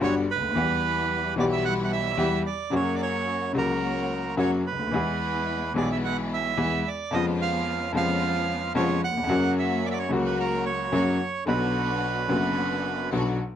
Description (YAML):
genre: tango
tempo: 110 BPM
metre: 4/4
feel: rubato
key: unclear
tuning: A4 = 437 Hz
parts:
  - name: bandoneon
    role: melody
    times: 0.0-13.1 s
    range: A#4 to F#5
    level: -28 LUFS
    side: right 8 dB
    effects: none
  - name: bright concert grand piano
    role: accompaniment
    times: 0.0-13.4 s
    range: F#1 to G#4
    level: -26 LUFS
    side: left 2 dB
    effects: none
  - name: rich symphonic string section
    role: stabs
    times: 0.0-13.4 s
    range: E#3 to F#4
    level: -32 LUFS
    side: equal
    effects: none
room: moderate club reverb, RT60 0.5 s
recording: close, detailed microphones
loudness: -23 LUFS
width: side -9 dB against mid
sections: 0.0-13.6 A section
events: none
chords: 0.0 Gmaj7; 0.6 Em; 2.7 F#; 4.9 E; 7.1 C#7/E#; 9.3 F#; 11.5 Bm